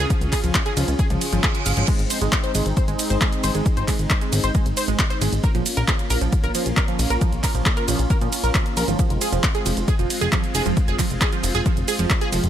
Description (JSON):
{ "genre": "uplifting trance", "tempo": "135 BPM", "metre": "4/4", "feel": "straight", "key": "Ab major", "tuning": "A4 = 442 Hz", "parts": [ { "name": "filtered supersaw swell", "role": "sustained chords", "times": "0.0-12.5 s", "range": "Db3 to Ab4", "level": "-28 LUFS", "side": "equal", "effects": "vintage 12-bit sampler grit, sidechain pumping" }, { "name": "tight sequenced synth", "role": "arpeggios", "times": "0.0-12.4 s", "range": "F3 to F5", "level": "-26 LUFS", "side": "right 3 dB", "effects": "chorus, phaser, sidechain pumping, ping-pong delay" }, { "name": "plucky analog bass", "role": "bass", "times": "0.0-12.5 s", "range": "F1 to Bb2", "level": "-23 LUFS", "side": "equal", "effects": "sidechain pumping" }, { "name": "electronic kick drum", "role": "drums", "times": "0.1-12.2 s", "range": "none", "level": "-21 LUFS", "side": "equal", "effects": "overdrive" }, { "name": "punchy analog drum machine", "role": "drums", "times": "0.1-12.5 s", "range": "crash cymbal, handclaps, hi-hat, ride cymbal, shaker", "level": "-26 LUFS", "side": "right 1 dB", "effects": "overdrive, sidechain pumping on hats, sidechain pumping on perc, sidechain pumping on cymbals" }, { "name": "reverse cymbal", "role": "sound effects", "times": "1.2-1.9 s", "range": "none", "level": "-29 LUFS", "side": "right 6 dB", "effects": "none" } ], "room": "little or no reverb", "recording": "none", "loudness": "-18 LUFS", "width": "side -10 dB against mid", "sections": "0.0-12.5 A section", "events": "reverse cymbal 1.2-1.9", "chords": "0.0 Db; 1.9 Ab; 5.4 Bbm; 9.0 Fm" }